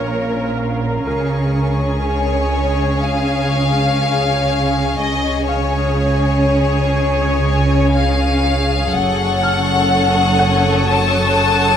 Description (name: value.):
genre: cinematic, suspense film score.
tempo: 61 BPM.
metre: 4/4.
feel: straight.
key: unclear.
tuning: A4 = 439 Hz.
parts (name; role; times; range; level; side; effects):
rich chamber violin section; melody; 0.0-11.8 s; Db5 to A5; -19 LUFS; left 5 dB; none.
rich chamber violin section; second line; 0.0-11.8 s; Db4 to Bb4; -23 LUFS; left 2 dB; none.
bubbling stepped-filter texture; sustained chords; 0.0-11.8 s; Ab4 to Ab5; -23 LUFS; right 2 dB; chorus, built-in reverb.
clear chamber double bass section; bass; 0.0-11.8 s; Gb1 to Db2; -20 LUFS; right 2 dB; none.
warm studio cello section; bass; 0.0-11.8 s; Gb2 to Db3; -20 LUFS; right 1 dB; none.
clear grand piano; texture; 0.0-11.8 s; Bb4 to F6; -27 LUFS; equal; none.
rich chamber violin section; texture; 1.1-11.8 s; Ab5 to E6; -28 LUFS; left 5 dB; none.
room: light reverb.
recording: close, detailed microphones.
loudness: -14 LUFS.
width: side -8 dB against mid.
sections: 0.0-11.8 A section.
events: none.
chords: 0.0 Bbm; 1.1 Db; 8.9 Gbm.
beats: 0.07 | 1.06 2.04 3.02 4.01 | 4.99 5.97 6.96 7.94 | 8.93 9.91 10.89.